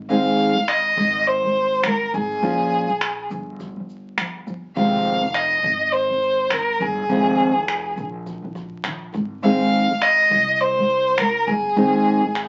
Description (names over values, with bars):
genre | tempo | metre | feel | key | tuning
acoustic pop | 103 BPM | 4/4 | swing 60% on 16ths | Ab major | A4 = 441 Hz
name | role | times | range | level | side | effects
nylon-string guitar | accompaniment | 0.0-12.5 s | F2 to Ab4 | -23 LUFS | equal | none
upright bass | bass | 0.0-12.5 s | F1 to C2 | -36 LUFS | equal | none
clear violin | melody | 0.1-12.5 s | Ab4 to F5 | -21 LUFS | equal | none
jazz brush drum kit | drums | 0.1-12.5 s | finger snaps, kick drum, shaker | -30 LUFS | equal | none
room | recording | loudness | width
moderate studio reverb, RT60 0.5 s | very old 78 rpm record, vinyl crackle, nothing above 7.7 kHz | -20 LUFS | mono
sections
0.0-12.5 A section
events
none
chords
0.0 Ab; 2.4 Bbm; 4.8 Fm7; 9.1 Ab